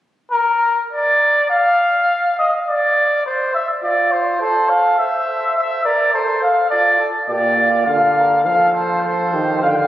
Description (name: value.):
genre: classical, imitative canzona for brass ensemble.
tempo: 103 BPM.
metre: 3/4.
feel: straight.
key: unclear.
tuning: A4 = 441 Hz.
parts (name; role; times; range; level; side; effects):
mellow trumpet; melody; 0.3-9.9 s; Bb4 to G5; -15 LUFS; left 1 dB; none.
mellow flugelhorn; second line; 3.8-9.8 s; F4 to C5; -21 LUFS; right 2 dB; none.
clear trombone; accompaniment; 7.3-9.9 s; Bb2 to F3; -20 LUFS; right 2 dB; none.
room: wet church reverb, RT60 3.4 s.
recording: recorded on a phone in the room, club reverb.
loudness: -14 LUFS.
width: side -13 dB against mid.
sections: 0.0-9.9 A section.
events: none.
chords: 0.0 N.C.; 3.3 F5/C; 4.4 Am; 5.0 C; 6.1 F/A; 6.7 Bb/F; 7.9 Dm; 8.5 F.